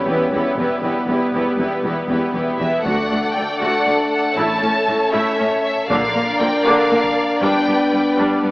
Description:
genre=cinematic, epic orchestral film score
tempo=79 BPM (dotted quarters)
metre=6/8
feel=straight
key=D major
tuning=A4 = 440 Hz
part: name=warm symphonic violin section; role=second line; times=0.0-8.5 s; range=G4 to D5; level=-22 LUFS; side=equal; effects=none
part: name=rich symphonic viola section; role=accompaniment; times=0.0-8.5 s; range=D3 to F#4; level=-22 LUFS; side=equal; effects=none
part: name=warm French horn section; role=sustained chords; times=0.0-8.5 s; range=G3 to D4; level=-22 LUFS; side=left 1 dB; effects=none
part: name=rich symphonic cello section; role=bass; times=0.1-8.5 s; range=D2 to Bb2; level=-26 LUFS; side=equal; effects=none
part: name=rich symphonic double bass section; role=bass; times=0.1-7.6 s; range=E1 to D2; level=-31 LUFS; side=equal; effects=none
part: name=rich symphonic violin section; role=melody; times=2.6-8.2 s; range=E5 to A5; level=-21 LUFS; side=left 1 dB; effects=none
part: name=taiko ensemble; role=drums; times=2.9-7.3 s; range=none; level=-38 LUFS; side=equal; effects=none
room=wet scoring stage reverb, RT60 1.9 s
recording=AM radio sound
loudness=-15 LUFS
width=side -21 dB against mid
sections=0.0-2.9 A section; 2.9-8.5 B section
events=build-up 0.0-2.9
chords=0.0 Em; 2.9 D; 4.4 A; 5.9 Bb; 7.4 G

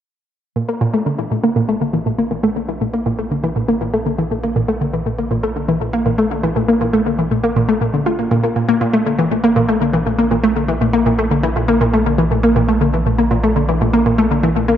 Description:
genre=ambient, sequencer-driven space music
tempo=120 BPM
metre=4/4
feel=straight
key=Bb lydian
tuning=A4 = 437 Hz
part: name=analog pluck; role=riff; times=0.6-14.8 s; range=Bb2 to F4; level=-14 LUFS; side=equal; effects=chorus, ping-pong delay
part: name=warm sub bass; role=bass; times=0.6-14.8 s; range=Bb1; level=-25 LUFS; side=right 1 dB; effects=tube saturation
room=wet spring reverb, RT60 2.6 s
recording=echo-heavy mix, nothing above 7.8 kHz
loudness=-14 LUFS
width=side -10 dB against mid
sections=0.6-14.8 A section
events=fade-in on sub bass 0.6-14.8; filter sweep on synth arpeggio sound 0.6-14.8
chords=0.6 Bb5

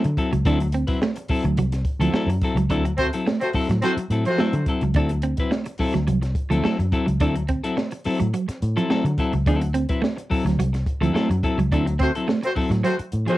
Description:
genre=funk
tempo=106 BPM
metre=4/4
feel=straight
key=D mixolydian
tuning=A4 = 440 Hz
part: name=clean electric guitar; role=accompaniment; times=0.0-13.4 s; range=F#3 to B4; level=-25 LUFS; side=left 3 dB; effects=none
part: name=compact cocktail drum kit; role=drums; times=0.0-13.4 s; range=hi-hat, kick drum, snare drum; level=-26 LUFS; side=equal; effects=cassette tape
part: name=clean electric guitar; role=riff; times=0.1-13.4 s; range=F3 to D4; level=-25 LUFS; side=right 4 dB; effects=tremolo
part: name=vintage muted fingered electric bass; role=bass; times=0.1-13.3 s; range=C2 to D3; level=-22 LUFS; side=equal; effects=none
part: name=mellow horn section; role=second line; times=3.0-4.7, 12.0-13.4 s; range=A3 to C5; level=-23 LUFS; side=left 1 dB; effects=none
room=light reverb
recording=home recording on cassette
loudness=-20 LUFS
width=side -16 dB against mid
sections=0.0-13.4 A section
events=band accent 2.7-5.0, 11.7-13.4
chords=0.0 D9

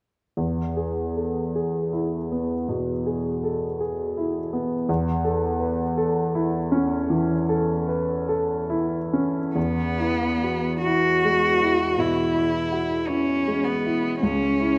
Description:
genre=classical, romantic duo for cello and grand piano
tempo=52 BPM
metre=4/4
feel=uneven beats, rubato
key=E major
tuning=A4 = 440 Hz
part: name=warm grand piano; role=accompaniment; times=0.4-14.8 s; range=C#2 to B4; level=-26 LUFS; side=equal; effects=none
part: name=rich cello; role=melody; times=9.6-14.8 s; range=B3 to F#4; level=-25 LUFS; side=equal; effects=none
room=moderate scoring stage reverb, RT60 2.0 s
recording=none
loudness=-24 LUFS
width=mono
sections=0.4-9.6 A section; 9.6-14.8 B section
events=none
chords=0.4 E; 4.9 A/E; 9.6 E; 14.2 C#m

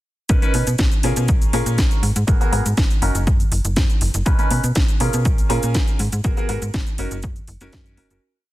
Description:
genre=filtered disco house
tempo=121 BPM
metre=4/4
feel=straight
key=unclear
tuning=A4 = 440 Hz
part: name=warm baby grand piano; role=accompaniment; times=0.3-8.2 s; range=B3 to B4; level=-25 LUFS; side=equal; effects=phaser, sidechain pumping
part: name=slap-like FM bass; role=bass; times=0.3-8.2 s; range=F#1 to B2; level=-22 LUFS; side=equal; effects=sidechain pumping
part: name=electronic kick drum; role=drums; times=0.3-7.8 s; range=none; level=-19 LUFS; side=equal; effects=overdrive
part: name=house drum kit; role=drums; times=0.3-8.2 s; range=hi-hat, shaker, snare drum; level=-26 LUFS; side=equal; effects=overdrive, sidechain pumping on hats, sidechain pumping on perc
room=little or no reverb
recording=dense, heavily limited modern master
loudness=-16 LUFS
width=side -16 dB against mid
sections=0.3-8.2 drop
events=drop 0.3-8.2; fade-out 5.6-8.2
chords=0.3 Bmaj9; 1.3 A#m7; 2.0 G#m9; 3.0 F#6; 4.3 Bmaj9; 5.3 A#m7; 6.0 G#m9; 7.0 F#6

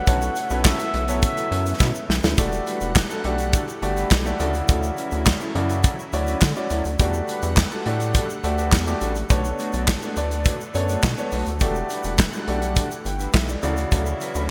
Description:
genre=early-eighties boogie funk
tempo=104 BPM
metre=4/4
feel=straight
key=E dorian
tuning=A4 = 441 Hz
part: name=expressive synth lead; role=melody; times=0.0-2.1 s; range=E5 to F#5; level=-30 LUFS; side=equal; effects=chorus, delay
part: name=lush unison pad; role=sustained chords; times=0.0-14.5 s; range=C#3 to F#5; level=-36 LUFS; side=equal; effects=chorus
part: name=mellow electric guitar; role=riff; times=0.0-14.5 s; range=F#3 to D5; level=-35 LUFS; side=equal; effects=lush chorus
part: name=warm concert grand piano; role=accompaniment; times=0.1-14.5 s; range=C#3 to G5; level=-30 LUFS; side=equal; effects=tube saturation
part: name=rubbery square bass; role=bass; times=0.1-14.5 s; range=E1 to D3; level=-28 LUFS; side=equal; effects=none
part: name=modern studio drum kit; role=drums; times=0.1-14.5 s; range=handclaps, hi-hat, kick drum, snare drum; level=-24 LUFS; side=equal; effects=gated reverb
part: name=tube shaker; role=percussion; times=0.1-14.5 s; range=none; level=-41 LUFS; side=equal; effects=none
room=moderate lush hall reverb, RT60 2.6 s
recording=bright 1980s-style digital production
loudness=-22 LUFS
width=mono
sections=0.0-2.4 A section; 2.4-14.5 B section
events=drum fill 1.8-2.4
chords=0.1 B9sus4; 2.4 Em11; 4.4 Dmaj9; 7.0 Em11; 9.3 Bm9; 11.6 Em11; 13.6 Dmaj9

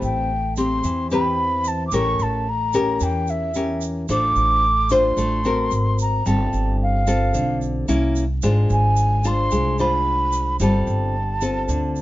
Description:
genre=bossa nova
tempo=111 BPM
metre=4/4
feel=straight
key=unclear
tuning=A4 = 440 Hz
part: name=breathy mellow concert flute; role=melody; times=0.0-12.0 s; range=E5 to D6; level=-22 LUFS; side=right 1 dB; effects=none
part: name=nylon-string guitar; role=accompaniment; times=0.0-12.0 s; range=D3 to C5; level=-23 LUFS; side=left 2 dB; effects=none
part: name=upright bass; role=bass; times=0.0-12.0 s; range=G1 to E2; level=-22 LUFS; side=equal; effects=none
part: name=tube shaker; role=percussion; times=0.0-12.0 s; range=none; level=-38 LUFS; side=right 8 dB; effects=none
room=light reverb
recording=dark, warm production, nothing above 7.5 kHz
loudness=-18 LUFS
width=side -16 dB against mid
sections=0.0-12.0 A section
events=none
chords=0.0 Am9; 1.9 A7b9; 4.1 Dm7/A; 5.7 Ab9; 6.3 G9sus4; 7.9 C7b9; 8.4 Fm6/Ab; 10.6 G9sus4

